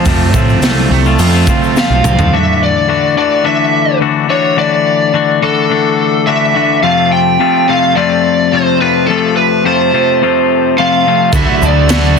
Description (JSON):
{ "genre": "indie rock", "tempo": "106 BPM", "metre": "4/4", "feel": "straight", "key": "unclear", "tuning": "A4 = 440 Hz", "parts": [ { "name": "lead guitar through a small cranked amp", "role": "melody", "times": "0.0-12.2 s", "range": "A4 to A5", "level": "-13 LUFS", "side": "right 2 dB", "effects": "overdrive, digital delay" }, { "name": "crunchy overdriven guitar", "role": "riff", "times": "0.0-2.3, 11.3-12.2 s", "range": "A3 to F#4", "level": "-17 LUFS", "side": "right 12 dB", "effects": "wide subtle chorus, digital delay" }, { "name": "twangy electric guitar", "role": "riff", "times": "0.0-12.2 s", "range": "F2 to F#4", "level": "-13 LUFS", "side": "left 11 dB", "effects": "none" }, { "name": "growling picked electric bass", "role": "bass", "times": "0.0-2.3, 11.3-12.1 s", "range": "B1 to A2", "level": "-12 LUFS", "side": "right 1 dB", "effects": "overdrive" }, { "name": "raw garage drum kit", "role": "drums", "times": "0.1-2.3, 11.3-12.0 s", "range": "crash cymbal, hi-hat, kick drum, snare drum, toms", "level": "-14 LUFS", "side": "right 2 dB", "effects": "none" }, { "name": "tube shaker", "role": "percussion", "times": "0.1-2.3, 11.3-12.0 s", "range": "none", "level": "-28 LUFS", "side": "left 18 dB", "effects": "none" }, { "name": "glockenspiel with soft plastic mallets", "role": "second line", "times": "10.8-12.2 s", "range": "A5 to C6", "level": "-24 LUFS", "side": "right 10 dB", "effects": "none" } ], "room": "light reverb, studio ambience", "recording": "dense, heavily limited modern master", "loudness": "-9 LUFS", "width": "side -5 dB against mid", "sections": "0.0-2.3 A section; 2.3-12.2 B section", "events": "drum fill 1.8-2.3", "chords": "0.0 F; 2.3 Dadd9; 6.8 F; 11.3 Dadd9" }